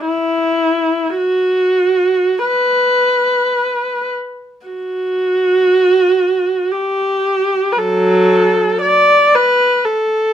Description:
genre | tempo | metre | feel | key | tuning
classical, free, expressive piece for unaccompanied viola | 42-59 BPM | 3/4 | rubato | unclear | A4 = 439 Hz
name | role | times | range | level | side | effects
rich viola | solo | 0.0-10.3 s | F#3 to D5 | -12 LUFS | equal | none
room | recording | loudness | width
light reverb | minimal, uncompressed stereo recording | -12 LUFS | side -9 dB against mid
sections
0.0-10.3 A section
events
none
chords
none

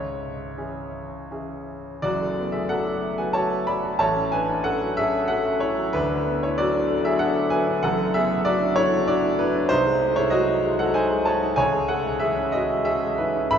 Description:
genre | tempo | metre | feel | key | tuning
classical, romantic character piece for solo piano | 94 BPM | 3/4 | uneven beats, rubato | F# minor, C# minor from 9.7 s | A4 = 441 Hz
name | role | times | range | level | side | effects
warm concert grand piano | solo | 0.0-13.6 s | F#1 to B5 | -21 LUFS | equal | none
room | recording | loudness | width
wet cathedral reverb, RT60 5.5 s | recorded in a church or concert hall, nothing above 7.6 kHz | -20 LUFS | side -8 dB against mid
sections
0.0-2.0 A section; 2.0-13.6 B section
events
none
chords
0.0 C#m; 2.0 F#m; 4.0 F#m/A; 5.9 D; 7.8 D/F#; 9.7 G#7/B#; 11.6 C#m

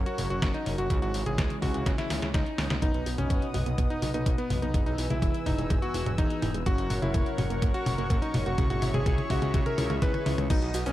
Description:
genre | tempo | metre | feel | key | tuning
italo disco | 125 BPM | 4/4 | straight | B major | A4 = 439 Hz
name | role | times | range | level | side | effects
warm analog pad | sustained chords | 0.0-10.9 s | E3 to E6 | -37 LUFS | right 1 dB | chorus
mellow synth brass | stabs | 0.0-10.9 s | B2 to C#5 | -37 LUFS | left 3 dB | chorus
fat analog bass | bass | 0.0-10.9 s | E1 to C#2 | -32 LUFS | equal | tube saturation
clear electric grand piano | melody | 0.1-10.9 s | B3 to B4 | -33 LUFS | equal | ping-pong delay
detuned 8-bit digital drum machine | drums | 0.1-10.9 s | cabasa, congas, crash cymbal, hi-hat, snare drum, toms | -32 LUFS | left 1 dB | none
electronic kick drum | drums | 0.4-10.6 s | none | -27 LUFS | equal | none
soft round pluck | arpeggios | 2.8-10.9 s | G#3 to F#4 | -38 LUFS | right 3 dB | chorus, ping-pong delay
room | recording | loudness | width
light reverb | dark, warm production | -25 LUFS | side -14 dB against mid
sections
0.0-2.8 A section; 2.8-10.5 B section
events
filter sweep on analog polysynth 0.0-2.8; drum fill 1.9-2.8, 2.8-10.5; filter sweep on synth arpeggio sound 2.8-10.5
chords
0.0 F#; 0.9 C#m; 2.8 B; 4.7 E; 6.7 F#; 8.6 C#m

